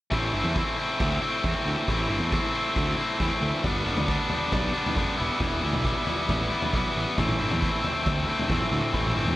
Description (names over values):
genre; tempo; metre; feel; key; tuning
indie rock; 136 BPM; 4/4; straight; A minor; A4 = 440 Hz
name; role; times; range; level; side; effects
biting overdriven guitar; riff; 0.1-9.4 s; G2 to E4; -25 LUFS; left 1 dB; none
fuzz picked electric bass; bass; 0.1-9.4 s; E1 to E2; -29 LUFS; equal; overdrive
vintage drum kit; drums; 0.1-9.4 s; kick drum, toms; -30 LUFS; equal; none
room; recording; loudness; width
light reverb, small room ambience; bright 1980s-style digital production; -23 LUFS; side -16 dB against mid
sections
0.1-9.4 A section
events
none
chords
0.1 Am; 3.6 Gmaj7; 5.2 Em; 7.2 Am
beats
| 0.12 0.56 1.00 1.44 | 1.88 2.33 2.77 3.21 | 3.65 4.09 4.53 4.97 | 5.41 5.85 6.29 6.73 | 7.17 7.61 8.05 8.49 | 8.93